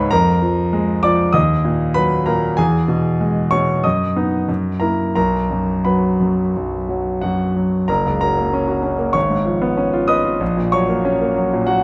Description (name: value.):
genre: classical, virtuoso piano study.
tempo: 87-98 BPM.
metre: 4/4.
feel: rubato.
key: B major, F# major from 7.9 s.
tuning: A4 = 440 Hz.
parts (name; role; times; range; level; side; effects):
clear concert grand piano; solo; 0.0-11.8 s; F#1 to E6; -18 LUFS; equal; none.
room: light reverb.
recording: close, detailed microphones.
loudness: -18 LUFS.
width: mono.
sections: 0.0-7.9 A section; 7.9-11.8 B section.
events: none.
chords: 0.1 A#7/E#; 1.3 D#m; 2.6 E; 3.8 B/F#; 4.5 F#7; 5.2 B5; 7.9 F#; 9.1 C#7/G#; 10.4 F#/A#.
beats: | 0.11 0.73 1.34 1.97 | 2.60 3.21 3.84 4.49 | 5.16 5.85 6.54 7.22 | 7.89 8.53 9.15 9.78 | 10.41 11.04 11.66.